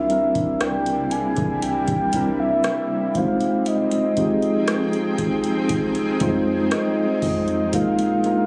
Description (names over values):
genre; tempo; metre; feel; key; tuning
contemporary R&B; 59 BPM; 4/4; straight; F dorian; A4 = 444 Hz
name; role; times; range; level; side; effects
soft octave-layered synth lead; melody; 0.0-8.5 s; Eb5 to Ab5; -26 LUFS; equal; chorus
mellow tine electric piano; accompaniment; 0.0-8.5 s; G3 to C5; -24 LUFS; equal; none
granular cloud pad; sustained chords; 0.0-8.5 s; C3 to G5; -32 LUFS; equal; built-in reverb, sidechain pumping
warm 808-style bass; bass; 0.0-8.5 s; F1 to F2; -36 LUFS; equal; none
booming analog drum machine; drums; 0.1-8.5 s; hi-hat, kick drum, rim click; -30 LUFS; equal; vintage 12-bit sampler grit
celesta; texture; 0.6-3.6 s; D5 to G5; -42 LUFS; equal; none
room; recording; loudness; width
light reverb; recorded on a phone in the room, club reverb; -21 LUFS; mono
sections
0.0-8.5 A section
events
none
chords
0.0 C9; 3.2 Fm7; 7.7 Bb7sus4